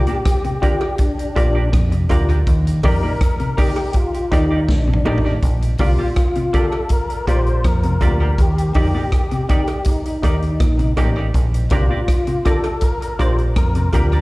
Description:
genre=roots reggae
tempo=81 BPM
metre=4/4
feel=straight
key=Bb major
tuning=A4 = 440 Hz
part: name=mellow tonewheel organ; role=melody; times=0.0-14.2 s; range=D4 to C5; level=-24 LUFS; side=left 1 dB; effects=overdrive, chorus vibrato, tape echo, plate reverb, slapback echo
part: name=barky reed electric piano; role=stabs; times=0.0-14.2 s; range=Eb4 to D5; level=-25 LUFS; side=left 2 dB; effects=fast tremolo, plate reverb, slapback echo
part: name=deep dub fingered electric bass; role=bass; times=0.0-14.2 s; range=A1 to F2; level=-18 LUFS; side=equal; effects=none
part: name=semi-hollow electric guitar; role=accompaniment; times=0.1-14.2 s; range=Bb3 to D5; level=-28 LUFS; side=right 3 dB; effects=analog chorus, tape echo, plate reverb, slapback echo
part: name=clean electric guitar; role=arpeggios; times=0.1-14.1 s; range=Bb2 to D3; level=-26 LUFS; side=left 2 dB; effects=lush chorus
part: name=vintage drum kit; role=drums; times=0.1-14.2 s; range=hi-hat, kick drum, rim click, snare drum, toms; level=-19 LUFS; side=equal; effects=none
part: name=cowbell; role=percussion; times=0.8-14.1 s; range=none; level=-33 LUFS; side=right 5 dB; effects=none
room=little or no reverb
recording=live gig heard through the venue's PA, recital hall reverb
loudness=-15 LUFS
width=side -21 dB against mid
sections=0.0-5.4 A section; 5.4-14.2 B section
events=tonewheel organ solo 0.0-5.4; drum fill 4.7-5.4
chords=0.0 Bb6; 2.5 Ebmaj7; 5.4 Bb6; 8.4 Ebmaj7; 11.3 Bb6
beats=0.25 0.99 1.73 | 2.47 3.21 3.95 4.69 | 5.43 6.17 6.90 7.64 | 8.38 9.12 9.86 10.60 | 11.34 12.08 12.82 13.56

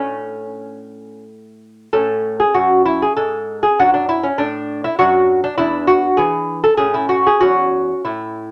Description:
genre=classical, baroque-style dance for lute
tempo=98 BPM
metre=3/4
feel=uneven beats, rubato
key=A major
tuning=A4 = 440 Hz
part: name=lute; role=solo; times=0.0-8.5 s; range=E2 to A4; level=-17 LUFS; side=equal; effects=none
room=moderate studio reverb, RT60 0.7 s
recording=none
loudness=-16 LUFS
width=mono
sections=0.0-1.9 A section; 1.9-8.5 B section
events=none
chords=0.0 N.C.; 1.9 A; 3.8 D/F#; 5.6 E9; 6.8 A; 7.4 A/E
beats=0.61 1.28 | 1.93 2.56 3.17 | 3.79 4.39 4.99 | 5.58 6.18 6.79 | 7.42 8.06

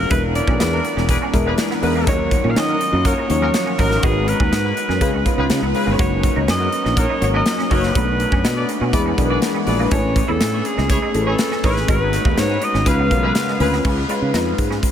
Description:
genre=polished 1980s jazz-funk pop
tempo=122 BPM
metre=4/4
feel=straight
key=unclear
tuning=A4 = 436 Hz
part: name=bright alto saxophone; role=melody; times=0.0-13.6 s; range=G#4 to E#5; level=-23 LUFS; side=equal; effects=none
part: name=FM electric piano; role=accompaniment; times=0.0-14.9 s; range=E#3 to G#5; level=-23 LUFS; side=left 4 dB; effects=analog chorus
part: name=warm analog pad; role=sustained chords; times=0.0-13.8 s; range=C#3 to A#5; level=-29 LUFS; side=equal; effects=chorus
part: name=sustaining fretless electric bass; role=bass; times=0.0-14.9 s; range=E1 to D#3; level=-21 LUFS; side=equal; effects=analog chorus
part: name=clean electric guitar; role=riff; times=0.1-14.8 s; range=G#3 to F#4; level=-29 LUFS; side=right 5 dB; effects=ensemble chorus
part: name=modern studio drum kit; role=drums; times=0.1-14.9 s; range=crash cymbal, hi-hat, kick drum, snare drum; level=-21 LUFS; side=equal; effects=none
part: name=warm horn section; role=second line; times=0.7-13.8 s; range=B3 to D5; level=-28 LUFS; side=left 1 dB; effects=analog delay
room=moderate huge ambient reverb, RT60 7.1 s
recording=dreamy mix soaked in reverb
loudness=-16 LUFS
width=side -9 dB against mid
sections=0.0-13.8 A section; 13.8-14.9 B section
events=none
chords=0.1 E7#11; 2.1 D#m7; 4.0 G#m7; 5.0 C#7; 6.0 F#6; 8.0 Bm7; 8.9 E7; 9.9 Amaj9; 11.9 G#m7; 12.9 C#7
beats=| 0.11 0.60 1.09 1.58 | 2.07 2.56 3.05 3.54 | 4.03 4.52 5.01 5.50 | 5.99 6.48 6.97 7.46 | 7.95 8.44 8.94 9.43 | 9.92 10.41 10.90 11.39 | 11.88 12.37 12.87 13.36 | 13.85 14.34 14.83

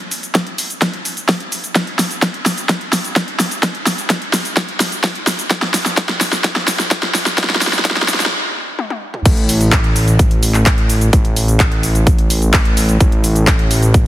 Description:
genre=EDM, festival progressive house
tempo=128 BPM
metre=4/4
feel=straight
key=unclear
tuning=A4 = 439 Hz
part: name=big-room dance drum kit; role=drums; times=0.0-14.0 s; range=cabasa, crash cymbal, handclaps, hi-hat, snare drum, toms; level=-16 LUFS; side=equal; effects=overdrive
part: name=electronic kick drum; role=drums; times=0.3-14.0 s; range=none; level=-13 LUFS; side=equal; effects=overdrive, high-pass filter on kick
part: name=fat analog bass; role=bass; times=9.3-14.1 s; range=A1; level=-14 LUFS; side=equal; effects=tube saturation, sidechain pumping
room=light reverb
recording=heavily compressed radio sound, high-pass filter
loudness=-13 LUFS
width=side -14 dB against mid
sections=0.0-9.3 A section; 9.3-14.1 B section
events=build-up 0.0-9.3; drum fill 0.0-8.3, 8.8-9.3; stop 8.3-9.3; drop 9.3-14.1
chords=none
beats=0.35 0.82 1.29 | 1.75 2.22 2.69 3.16 | 3.63 4.10 4.57 5.04 | 5.50 5.97 6.44 6.91 | 7.38 7.85 8.32 8.79 | 9.26 9.72 10.19 10.66 | 11.13 11.60 12.07 12.54 | 13.01 13.47 13.94

